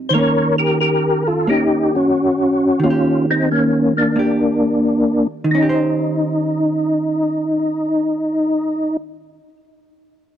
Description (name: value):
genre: jazz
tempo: 89 BPM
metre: 4/4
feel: swing 68% on 8ths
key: Eb mixolydian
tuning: A4 = 440 Hz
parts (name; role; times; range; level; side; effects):
- vintage hollow-body jazz guitar; accompaniment; 0.0-9.6 s; Ab2 to C5; -21 LUFS; right 2 dB; none
- percussive tonewheel organ; melody; 0.1-9.0 s; Bb3 to Db5; -16 LUFS; left 1 dB; slow rotary speaker, chorus vibrato
room: digital ambience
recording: dry, close 1970s-style studio recording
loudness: -15 LUFS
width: side -10 dB against mid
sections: 0.0-5.5 A section; 5.5-8.2 B section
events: none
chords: 0.1 Eb7; 5.5 Eb6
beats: | 0.13 0.80 1.48 2.15 | 2.82 3.50 4.17 4.84 | 5.52 6.19 6.86 7.54